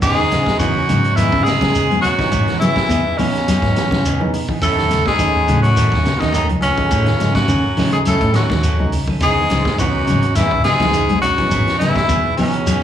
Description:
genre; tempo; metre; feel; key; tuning
afrobeat; 104 BPM; 4/4; swing 54% on 16ths; C# minor; A4 = 440 Hz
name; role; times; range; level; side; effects
breathy tenor saxophone; melody; 0.0-12.8 s; C#4 to A4; -19 LUFS; equal; slapback echo
raspy baritone saxophone; second line; 0.0-12.8 s; C#2 to A2; -25 LUFS; left 2 dB; slapback echo
trombone with cup mute; second line; 0.0-12.8 s; C#3 to A3; -27 LUFS; right 2 dB; slapback echo
tine electric piano; accompaniment; 0.0-12.6 s; E3 to D#4; -28 LUFS; equal; medium stereo tremolo, slapback echo
semi-hollow electric guitar; stabs; 0.0-12.8 s; E3 to A4; -27 LUFS; right 9 dB; spring reverb, slapback echo
fingered electric bass; bass; 0.0-12.8 s; G#1 to B3; -20 LUFS; equal; none
vintage drum kit; drums; 0.0-12.8 s; crash cymbal, hi-hat, kick drum, snare drum; -24 LUFS; equal; none
shekere; percussion; 0.0-12.8 s; none; -24 LUFS; equal; none
electric guitar at the edge of break-up; arpeggios; 0.2-12.8 s; C#3 to G#3; -23 LUFS; left 4 dB; slapback echo
congas; percussion; 0.3-12.5 s; none; -25 LUFS; right 1 dB; none
room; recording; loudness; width
light reverb; live gig heard through the venue's PA, club reverb, small room ambience; -14 LUFS; side -10 dB against mid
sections
0.0-12.8 A section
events
none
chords
0.0 C#m9; 4.6 D#m7b5; 9.2 C#m9

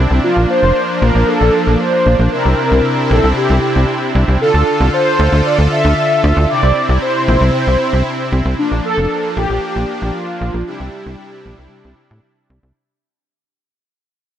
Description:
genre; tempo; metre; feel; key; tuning
synthwave; 115 BPM; 4/4; straight; unclear; A4 = 440 Hz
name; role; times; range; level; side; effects
soft supersaw; sustained chords; 0.0-12.7 s; C3 to A4; -18 LUFS; right 1 dB; none
tight sequencer bass; bass; 0.0-12.7 s; F1 to A2; -13 LUFS; equal; none
mellow synth brass; melody; 0.2-12.5 s; D4 to E5; -16 LUFS; equal; chorus, vintage 12-bit sampler grit, digital delay
room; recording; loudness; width
light reverb; none; -12 LUFS; side -10 dB against mid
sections
0.0-12.8 A section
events
fade-out 7.2-12.8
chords
0.2 Bb; 2.3 Cadd9; 4.4 Dm; 6.5 Cadd9; 8.6 Bb; 10.7 Cadd9

